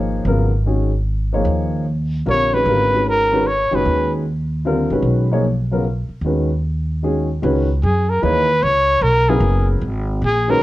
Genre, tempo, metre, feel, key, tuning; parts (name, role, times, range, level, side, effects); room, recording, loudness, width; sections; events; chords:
modal jazz; 151 BPM; 3/4; swing 66% on 8ths; G# dorian, C# dorian from 7.4 s; A4 = 437 Hz
dark baby grand piano; accompaniment; 0.0-10.6 s; C#3 to C#5; -20 LUFS; left 1 dB
upright bass; bass; 0.0-10.6 s; F#1 to F#2; -19 LUFS; equal
warm trumpet; melody; 2.3-4.1, 7.8-10.6 s; G#4 to C#5; -16 LUFS; equal; plate reverb
moderate club reverb, RT60 0.6 s; worn, warbling old tape, cassette tape, warbly pitch drift; -15 LUFS; side -16 dB against mid
0.0-7.4 A section; 7.4-10.6 B section
0.0 G#m11; 7.4 C#m11